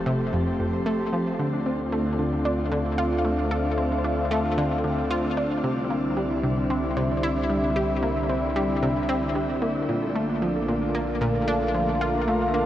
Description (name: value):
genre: ambient, sequencer-driven space music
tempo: 113 BPM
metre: 4/4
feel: straight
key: D minor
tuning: A4 = 440 Hz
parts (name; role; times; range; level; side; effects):
- sweeping resonant pad; sustained chords; 0.0-12.7 s; D3 to G4; -26 LUFS; equal; chorus
- concert harp; arpeggios; 0.0-12.7 s; C4 to C5; -30 LUFS; right 1 dB; auto-pan, ping-pong delay
- warm sub bass; bass; 0.0-12.7 s; F1 to D2; -33 LUFS; equal; none
- analog pluck; riff; 0.1-12.7 s; F2 to A4; -27 LUFS; equal; chorus, ping-pong delay
room: wet shimmer reverb, RT60 6.8 s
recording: worn, warbling old tape, cassette tape, warbly pitch drift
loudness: -22 LUFS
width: side -12 dB against mid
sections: 0.0-1.4 A section; 1.4-12.7 B section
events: none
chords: 0.0 Fadd9; 1.4 Dm7; 5.6 Cadd9; 9.9 Bbmaj7